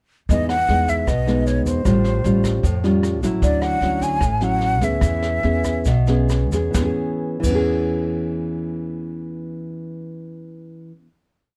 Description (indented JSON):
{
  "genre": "bossa nova",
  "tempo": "130-153 BPM",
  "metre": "4/4",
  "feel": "straight",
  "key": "E major",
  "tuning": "A4 = 440 Hz",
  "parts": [
    { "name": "breathy concert flute", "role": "melody", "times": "0.3-6.3 s", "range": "C5 to G#5", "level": "-25 LUFS", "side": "equal", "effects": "none" },
    { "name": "nylon-string guitar", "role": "accompaniment", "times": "0.3-11.1 s", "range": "A2 to G#4", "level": "-24 LUFS", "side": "equal", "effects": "none" },
    { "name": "upright bass", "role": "bass", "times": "0.3-10.9 s", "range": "A1 to E#2", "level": "-24 LUFS", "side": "equal", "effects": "none" },
    { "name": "jazz brush drum kit", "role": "drums", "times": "0.3-7.6 s", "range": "crash cymbal, kick drum, rim click, snare drum", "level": "-29 LUFS", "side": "equal", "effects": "none" },
    { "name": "tube shaker", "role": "percussion", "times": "0.3-7.6 s", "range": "none", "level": "-42 LUFS", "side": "equal", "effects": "none" }
  ],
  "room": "light reverb",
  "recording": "dark, warm production",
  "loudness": "-20 LUFS",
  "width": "mono",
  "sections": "0.3-6.7 A section; 6.7-10.4 final chord",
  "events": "slowing down 3.4-6.7",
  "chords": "0.3 Emaj7; 1.9 A7alt; 3.4 Dmaj9; 5.0 E6",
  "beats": "| 0.29 0.68 1.07 1.47 | 1.86 2.25 2.64 3.03 | 3.42 3.81 4.21 4.61 | 5.02 5.43 5.86 6.30 | 6.75 7.21 7.67 8.13 | 8.59 9.05 9.51 9.97"
}